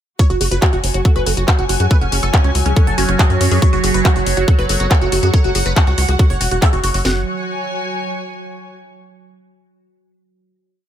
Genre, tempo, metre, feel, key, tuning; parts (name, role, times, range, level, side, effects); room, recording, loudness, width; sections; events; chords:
psychedelic trance; 140 BPM; 4/4; straight; A4 = 441 Hz
supersaw stab; melody; 0.2-7.2 s; C#4 to F#5; -22 LUFS; right 1 dB; phaser, sidechain pumping, tape echo
overtone-sweeping drone; sustained chords; 1.0-7.1 s; F#3; -25 LUFS; right 3 dB; chorus, built-in reverb, sidechain pumping
woody wave-folded pluck; riff; 0.2-7.2 s; F#4 to F#5; -25 LUFS; moving between equal and right 7 dB; chorus, auto-pan, sidechain pumping, dub echo
drum and bass drum kit; drums; 0.2-7.2 s; kick drum, snare drum; -13 LUFS; equal; overdrive
drum and bass drum kit; drums; 0.2-7.0 s; handclaps, hi-hat; -21 LUFS; left 2 dB
dark studio string section; texture; 0.2-8.7 s; F#4 to G#5; -26 LUFS; equal; sidechain pumping
tight sequencer bass; bass; 0.3-7.2 s; E1 to F#2; -18 LUFS; equal
formant-sweep wobble bass; second line; 4.7-5.5 s; A3 to B3; -35 LUFS; left 3 dB
digital ambience; -13 LUFS; side -10 dB against mid
0.2-7.0 groove; 7.0-8.8 final chord
filter sweep on synth arpeggio sound 0.2-7.0
0.2 F#5